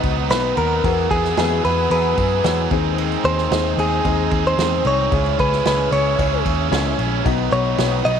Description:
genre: piano-driven pop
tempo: 112 BPM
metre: 4/4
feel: straight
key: unclear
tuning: A4 = 443 Hz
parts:
  - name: clear concert grand piano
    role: accompaniment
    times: 0.0-8.2 s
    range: B2 to A#5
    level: -24 LUFS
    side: left 13 dB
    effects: none
  - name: dark studio string section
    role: sustained chords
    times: 0.0-8.2 s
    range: B3 to E6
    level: -32 LUFS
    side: equal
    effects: none
  - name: biting overdriven guitar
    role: riff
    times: 0.0-8.2 s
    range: B2 to B4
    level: -25 LUFS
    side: right 14 dB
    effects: none
  - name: vintage muted picked electric bass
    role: bass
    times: 0.0-8.2 s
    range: A#1 to F#2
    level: -22 LUFS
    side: equal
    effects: none
  - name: unplugged drum kit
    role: drums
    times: 0.0-8.2 s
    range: kick drum, ride cymbal, snare drum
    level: -25 LUFS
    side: right 3 dB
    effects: none
  - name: direct-recorded clean electric guitar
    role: melody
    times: 0.3-8.2 s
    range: G#4 to D#5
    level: -21 LUFS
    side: equal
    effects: tape echo
room: moderate plate reverb, RT60 2.6 s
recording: 1960s-style stereo with parts hard left and right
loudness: -16 LUFS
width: side -7 dB against mid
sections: 0.0-8.2 A section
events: none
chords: 0.0 B; 0.8 Eadd9; 2.7 G#/D#; 5.1 C#m; 7.3 B

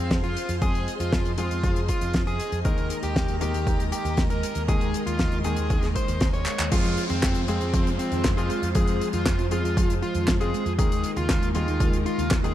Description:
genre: italo disco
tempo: 118 BPM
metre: 4/4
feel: straight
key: F minor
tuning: A4 = 441 Hz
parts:
  - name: dark smooth lead guitar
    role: melody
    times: 0.0-12.5 s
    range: C4 to Db5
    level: -30 LUFS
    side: equal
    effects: overdrive, ping-pong delay
  - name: string machine, full ensemble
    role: sustained chords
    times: 0.0-12.5 s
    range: Ab3 to C6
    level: -32 LUFS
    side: equal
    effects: ensemble chorus
  - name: clear grand piano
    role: stabs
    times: 0.0-12.5 s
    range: Eb3 to Bb4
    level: -34 LUFS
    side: left 4 dB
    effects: none
  - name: picked electric bass with an envelope filter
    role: bass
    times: 0.0-12.5 s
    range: Eb2 to F2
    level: -28 LUFS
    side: equal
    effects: tube saturation
  - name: damped 70s drum kit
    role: drums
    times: 0.1-12.5 s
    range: crash cymbal, handclaps, hi-hat, snare drum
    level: -30 LUFS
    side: left 1 dB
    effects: none
  - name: electronic kick drum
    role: drums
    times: 0.1-12.4 s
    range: none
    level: -25 LUFS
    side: equal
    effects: overdrive
  - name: soft round pluck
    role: arpeggios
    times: 6.7-12.5 s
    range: F2 to F4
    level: -34 LUFS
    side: right 3 dB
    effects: none
  - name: downlifter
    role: sound effects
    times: 6.7-10.8 s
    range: none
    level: -38 LUFS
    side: equal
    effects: none
room: light reverb, studio reverb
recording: dark, warm production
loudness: -22 LUFS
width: side -12 dB against mid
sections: 0.0-6.7 A section; 6.7-12.5 B section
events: drum fill 6.5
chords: 0.0 Fm; 2.7 Ebsus4; 6.7 Fm; 10.8 Ebsus4

